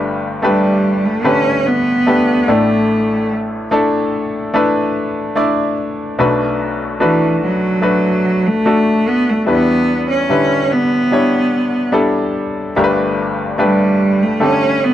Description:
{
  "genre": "pop",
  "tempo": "73 BPM",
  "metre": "4/4",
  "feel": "straight",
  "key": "unclear",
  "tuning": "A4 = 440 Hz",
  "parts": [
    { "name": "bright grand piano", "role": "accompaniment", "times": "0.0-14.9 s", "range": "G1 to D5", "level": "-16 LUFS", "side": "left 2 dB", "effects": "none" },
    { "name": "clear cello", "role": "melody", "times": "0.4-14.9 s", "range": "E3 to C#4", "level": "-15 LUFS", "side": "right 1 dB", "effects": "none" }
  ],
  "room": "light reverb, small room ambience",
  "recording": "dry, close 1970s-style studio recording",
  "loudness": "-13 LUFS",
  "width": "side -12 dB against mid",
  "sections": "0.0-14.9 A section",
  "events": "none",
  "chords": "0.0 Gadd9; 2.5 Asus4; 6.2 Bm7; 9.5 Em7; 12.8 Gadd9"
}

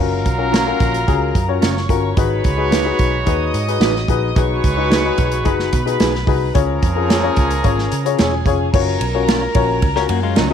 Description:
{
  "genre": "uptempo 1960s-style soul",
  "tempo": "110 BPM",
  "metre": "4/4",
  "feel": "straight",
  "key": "F# major",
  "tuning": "A4 = 440 Hz",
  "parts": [
    { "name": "clear horn section", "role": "second line", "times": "0.0-8.4 s", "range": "E#3 to C#5", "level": "-24 LUFS", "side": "right 2 dB", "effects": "tape echo" },
    { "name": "warm studio string section", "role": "second line", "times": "0.0-10.5 s", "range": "G#4 to D#6", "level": "-25 LUFS", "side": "right 1 dB", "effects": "none" },
    { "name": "warm upright piano", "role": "accompaniment", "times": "0.0-10.5 s", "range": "C#4 to C#5", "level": "-20 LUFS", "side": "left 11 dB", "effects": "none" },
    { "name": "vintage muted picked electric bass", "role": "bass", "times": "0.0-10.5 s", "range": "E1 to C#3", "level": "-21 LUFS", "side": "right 1 dB", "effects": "none" },
    { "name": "natural country drum kit", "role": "drums", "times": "0.3-10.5 s", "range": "crash cymbal, hi-hat, kick drum, ride cymbal, snare drum", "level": "-19 LUFS", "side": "right 1 dB", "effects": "none" },
    { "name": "mellow electric guitar", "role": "stabs", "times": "0.5-10.5 s", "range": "C#4 to C#5", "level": "-24 LUFS", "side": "right 12 dB", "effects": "none" },
    { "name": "electric guitar at the edge of break-up", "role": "riff", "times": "10.0-10.5 s", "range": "F#3 to A#4", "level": "-22 LUFS", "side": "left 10 dB", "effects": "none" }
  ],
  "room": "light reverb, studio ambience",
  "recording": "1960s-style stereo with parts hard left and right",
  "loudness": "-14 LUFS",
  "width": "side -8 dB against mid",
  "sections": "0.0-8.7 A section; 8.7-10.5 B section",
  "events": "none",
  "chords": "0.0 F#maj7; 2.2 G#m7; 4.4 B6; 6.6 C#; 8.7 F#maj7"
}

